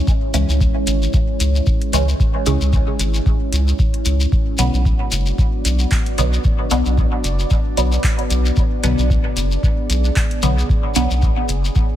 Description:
dub techno; 113 BPM; 4/4; swing 56% on 16ths; A4 = 440 Hz
deep dark ambient pad; sustained chords; 0.0-12.0 s; G#3 to D5; -25 LUFS; equal; chorus, built-in reverb, vintage 12-bit sampler grit, sidechain pumping
filtered dub chord stab; stabs; 0.0-11.1 s; B2 to C#4; -24 LUFS; equal; phaser, sidechain pumping, dub echo
electronic kick drum; drums; 0.1-11.9 s; -18 LUFS; equal
shekere; percussion; 0.1-11.9 s; -27 LUFS; left 4 dB
round analog bass; bass; 0.3-11.7 s; F#1 to C#2; -17 LUFS; equal; sidechain pumping
booming analog drum machine; drums; 0.3-11.6 s; handclaps, hi-hat; -27 LUFS; left 1 dB; dub echo
little or no reverb; -15 LUFS; side -12 dB against mid
0.0-12.0 A section
0.0 C#m; 4.3 Bm

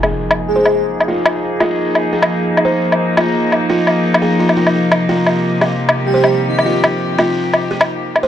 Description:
half-time drum and bass; 172 BPM; 4/4; swing 56% on 16ths, half-time; F minor; A4 = 441 Hz
rich chamber cello section; sustained chords; 0.0-8.3 s; C3 to Ab4; -16 LUFS; left 1 dB; low-pass filter
buzzing kalimba; arpeggios; 0.0-8.3 s; F4 to C5; -20 LUFS; right 1 dB; low-pass filter, tape echo
woodblock; drums; 0.0-8.2 s; -14 LUFS; left 1 dB; low-pass filter on perc, low-pass filter on hats, low-pass filter on snare, low-pass filter on toms
airy dreamy lead; melody; 0.5-0.8, 6.1-6.8 s; Eb4 to Ab4; -20 LUFS; right 1 dB; chorus, tape echo
light reverb; dark, warm production; -12 LUFS; side -10 dB against mid
0.0-8.3 A section
filter sweep on kalimba 0.0-8.3
0.0 Fm7; 4.6 Cm

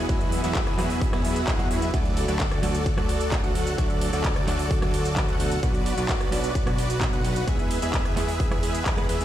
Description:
EDM, festival progressive house; 130 BPM; 4/4; straight; A4 = 440 Hz
clean electric guitar; accompaniment; 0.0-9.2 s; B2 to B4; -32 LUFS; right 3 dB; sidechain pumping, tape echo
lush unison pad; sustained chords; 0.0-9.2 s; E3 to B4; -34 LUFS; equal; chorus, sidechain pumping
dense compressed supersaw; riff; 0.0-9.2 s; B3 to F#5; -29 LUFS; equal; sidechain pumping, tape echo
fat analog bass; bass; 0.0-9.2 s; B1 to E2; -29 LUFS; equal; sidechain pumping
big-room dance drum kit; drums; 0.1-9.2 s; handclaps, hi-hat, ride cymbal, rim click; -32 LUFS; equal
electronic kick drum; drums; 0.1-9.0 s; -26 LUFS; equal
light reverb; played on a big sound system in a bare room, stone room reverb; -22 LUFS; side -12 dB against mid
0.0-9.2 A section
0.0 Eadd9; 1.9 D; 5.6 Bm; 7.5 E

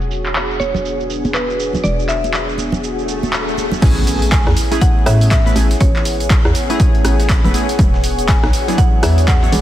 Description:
deep house; 121 BPM; 4/4; swing 60% on 16ths; A major; A4 = 440 Hz
dark analog pad; sustained chords; 0.0-9.6 s; B3 to G#4; -26 LUFS; left 1 dB; chorus, sidechain pumping
hollow knocking FM bass; bass; 0.0-9.6 s; E1 to A2; -18 LUFS; equal; sidechain pumping
punchy analog drum machine; drums; 0.0-9.6 s; crash cymbal, handclaps, hi-hat, rim click, shaker; -22 LUFS; equal; low-pass filter on perc, low-pass filter on snare, low-pass filter on hats, low-pass filter on cymbals, low-pass filter on room
ethereal airy pad; texture; 0.0-9.6 s; G#4 to F#5; -26 LUFS; equal; ensemble chorus, built-in reverb, sidechain pumping
mallet-like synth pluck; melody; 0.6-9.6 s; B4 to G#5; -23 LUFS; equal; chorus, cassette tape, dub echo
congas; percussion; 0.6-3.8 s; -23 LUFS; right 2 dB
swell and impact; sound effects; 3.0-5.8 s; -23 LUFS; equal
warm analog keys; stabs; 3.8-9.6 s; F#3 to C#5; -21 LUFS; equal; chorus, sidechain pumping
breakbeat sampler-style drum kit; drums; 3.8-9.6 s; hi-hat, snare drum; -34 LUFS; equal
electronic kick drum; drums; 3.8-9.4 s; -14 LUFS; equal
light reverb; dense, heavily limited modern master, vinyl crackle, low-pass filter; -12 LUFS; side -13 dB against mid
0.0-3.8 A section; 3.8-9.6 B section
swell 3.0-3.8; drop 3.8-9.6; impact 3.8-5.8
0.0 E7; 3.8 Amaj7; 7.8 E7

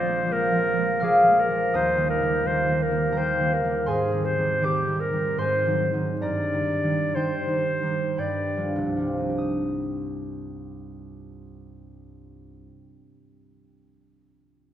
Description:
classical, romantic duo for clarinet and harp; 48-85 BPM; 3/4; rubato; C minor; A4 = 440 Hz
clear clarinet; melody; 0.0-8.8 s; G4 to D5; -25 LUFS; left 1 dB
concert harp; accompaniment; 0.0-12.9 s; Bb1 to F6; -24 LUFS; right 1 dB
wet scoring stage reverb, RT60 1.8 s; heard from further back in the room; -21 LUFS; side -11 dB against mid
0.0-9.4 A section; 9.4-13.0 B section
slowing down 2.8-9.4
0.0 Bb7; 1.8 Eb; 3.9 Abmaj7; 5.4 Ab7; 6.2 Cm/G; 8.2 G7; 9.4 Cm

